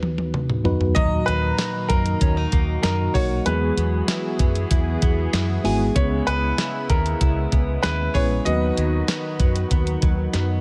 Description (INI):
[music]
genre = 1980s-style pop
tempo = 96 BPM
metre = 4/4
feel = straight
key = unclear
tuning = A4 = 439 Hz
[part]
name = mellow FM electric piano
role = accompaniment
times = 0.0-10.6 s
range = D#2 to A#5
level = -29 LUFS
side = equal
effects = chorus, tremolo
[part]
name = clean 12-bit digital drum machine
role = drums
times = 0.0-10.5 s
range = hi-hat, kick drum, snare drum, tambourine, toms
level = -24 LUFS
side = equal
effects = none
[part]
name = clear baby grand piano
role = melody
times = 0.9-9.7 s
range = A#4 to D#5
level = -29 LUFS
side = equal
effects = tape echo
[part]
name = brassy analog pad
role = sustained chords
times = 1.0-10.6 s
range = C#3 to A#5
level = -33 LUFS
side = equal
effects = chorus
[part]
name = direct-recorded clean electric guitar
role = riff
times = 1.0-10.6 s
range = F#3 to G#4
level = -33 LUFS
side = equal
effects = subtle chorus
[part]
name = vintage muted fingered electric bass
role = bass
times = 1.0-10.6 s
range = G#1 to F#2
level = -26 LUFS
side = equal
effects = none
[sound]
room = digital ambience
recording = none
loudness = -21 LUFS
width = mono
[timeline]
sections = 0.0-10.6 A section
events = drum fill 0.0-1.0, 10.3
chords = 0.0 B/D#; 1.0 D#m; 3.5 Eadd9; 6.0 C#m7; 8.5 B/D#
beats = 0.34 | 0.96 1.59 2.21 2.84 | 3.46 4.09 4.71 5.34 | 5.96 6.59 7.21 7.84 | 8.46 9.09 9.71 10.34